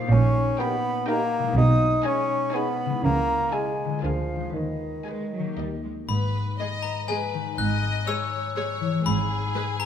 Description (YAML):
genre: cinematic, playful, whimsical film cue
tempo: 122 BPM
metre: 3/4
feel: straight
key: G# minor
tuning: A4 = 440 Hz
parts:
  - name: mellow concert flute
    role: second line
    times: 0.0-5.8 s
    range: D#5 to D#6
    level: -30 LUFS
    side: left 1 dB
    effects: none
  - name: concert harp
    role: arpeggios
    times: 0.0-9.9 s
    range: G#2 to C#5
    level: -30 LUFS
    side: left 6 dB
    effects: none
  - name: warm bassoon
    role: accompaniment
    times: 0.1-5.8 s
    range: D#3 to D#4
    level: -27 LUFS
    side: right 1 dB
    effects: none
  - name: rich studio double bass section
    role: bass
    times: 0.1-9.4 s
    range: G#1 to D#2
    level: -26 LUFS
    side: right 2 dB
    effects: none
  - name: warm studio cello section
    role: bass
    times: 0.1-9.4 s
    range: G#2 to G#3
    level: -28 LUFS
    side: right 3 dB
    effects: none
  - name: warm studio violin section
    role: melody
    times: 0.6-9.6 s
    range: B4 to G#5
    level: -39 LUFS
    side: left 4 dB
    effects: none
  - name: warm studio violin section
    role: second line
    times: 0.6-9.9 s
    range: G#4 to D#5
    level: -34 LUFS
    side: left 4 dB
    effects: none
  - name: rich studio viola section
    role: accompaniment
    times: 0.6-9.6 s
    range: G#3 to G#4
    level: -36 LUFS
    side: right 1 dB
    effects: none
  - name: mellow French horn section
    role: sustained chords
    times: 0.6-5.7 s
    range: D#4 to B4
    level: -39 LUFS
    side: left 4 dB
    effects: none
  - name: glockenspiel with brass mallets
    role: melody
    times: 6.1-9.9 s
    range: G#5 to F#6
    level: -30 LUFS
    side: left 4 dB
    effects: none
room: moderate scoring stage reverb, RT60 1.7 s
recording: minimal, uncompressed stereo recording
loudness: -22 LUFS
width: side -9 dB against mid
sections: 0.0-6.1 A section; 6.1-9.9 B section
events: none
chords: 0.1 D#7/A#; 1.6 G#m/B; 3.0 C#m; 4.0 A#7/D; 4.5 G#m/D#; 5.6 D#; 6.1 G#m; 7.6 C#m/G#; 9.1 G#m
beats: | 0.10 0.59 1.08 | 1.57 2.06 2.54 | 3.04 3.53 4.03 | 4.54 5.06 5.58 | 6.09 6.59 7.09 | 7.58 8.07 8.56 | 9.06 9.55